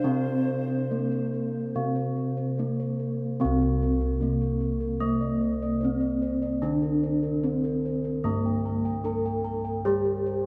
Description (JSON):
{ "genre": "Javanese gamelan", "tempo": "74 BPM", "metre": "4/4", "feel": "straight", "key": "unclear", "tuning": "A4 = 440 Hz", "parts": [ { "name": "gamelan-type bronze metallophone", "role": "melody", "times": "0.0-10.5 s", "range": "Bb3-45c to Bb4-45c", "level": "-31 LUFS", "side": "equal", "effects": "none" }, { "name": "breathy mellow tenor recorder", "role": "second line", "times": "0.0-1.3 s", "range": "C5", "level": "-41 LUFS", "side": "equal", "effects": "none" }, { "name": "gamelan-type bronze metallophone", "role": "accompaniment", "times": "0.0-10.5 s", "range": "C3 to Bb3-45c", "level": "-33 LUFS", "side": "equal", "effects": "none" }, { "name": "gamelan-type bossed gongs", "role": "arpeggios", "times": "0.0-10.5 s", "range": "Bb4-45c to Bb5-45c", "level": "-37 LUFS", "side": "equal", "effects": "none" }, { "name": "gamelan-type bossed gongs", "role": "bass", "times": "0.0-10.5 s", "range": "C2 to G4+25c", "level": "-33 LUFS", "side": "equal", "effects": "none" } ], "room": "wet cathedral reverb, RT60 5.5 s", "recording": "recorded in a church or concert hall", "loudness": "-27 LUFS", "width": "mono", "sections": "0.0-3.4 A section; 3.4-10.5 B section", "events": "none", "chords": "none" }